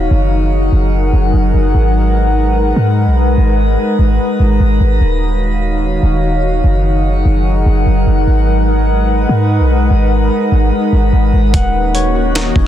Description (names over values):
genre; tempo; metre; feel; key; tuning
hip hop, atmospheric cloud-rap; 147 BPM; 4/4; half-time; G# dorian; A4 = 440 Hz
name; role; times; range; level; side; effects
warbly tape-like pad; sustained chords; 0.0-12.7 s; D#3 to F#5; -15 LUFS; left 1 dB; chorus, built-in reverb
concert harp; arpeggios; 0.0-0.8, 11.5-12.7 s; B3 to F#5; -22 LUFS; left 4 dB; tape echo
clean 808-style bass; bass; 0.0-12.7 s; D#1 to G#2; -12 LUFS; equal; none
breakbeat sampler-style drum kit; drums; 11.5-12.7 s; hi-hat, kick drum, snare drum; -18 LUFS; equal; vintage 12-bit sampler grit
room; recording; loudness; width
little or no reverb; dense, heavily limited modern master; -10 LUFS; side -11 dB against mid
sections
0.0-11.5 A section; 11.5-12.7 B section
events
none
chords
0.1 F#6; 1.7 G#m7; 5.0 D#m7; 6.6 F#6; 8.3 G#m7; 11.5 D#m7